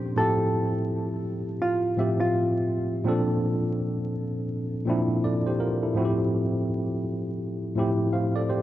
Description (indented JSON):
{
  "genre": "hip hop",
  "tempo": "83 BPM",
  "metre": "4/4",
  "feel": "swing 62% on 16ths",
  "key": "F major",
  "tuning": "A4 = 440 Hz",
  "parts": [
    { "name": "tine electric piano", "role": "accompaniment", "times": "0.0-8.6 s", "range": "A2 to F5", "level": "-24 LUFS", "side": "equal", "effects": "overdrive, fast stereo tremolo, cassette tape" },
    { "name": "hollow-body jazz guitar", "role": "melody", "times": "0.2-3.0 s", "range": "F4 to A4", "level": "-28 LUFS", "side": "equal", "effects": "tape echo" }
  ],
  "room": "moderate plate reverb, RT60 3.1 s",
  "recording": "dark, warm production, vinyl crackle, nothing above 7.5 kHz",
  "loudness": "-24 LUFS",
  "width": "side -13 dB against mid",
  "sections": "0.0-8.6 A section",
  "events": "none",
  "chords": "0.2 Fmaj7/A; 3.1 Bbmaj7; 5.9 Fmaj7/A"
}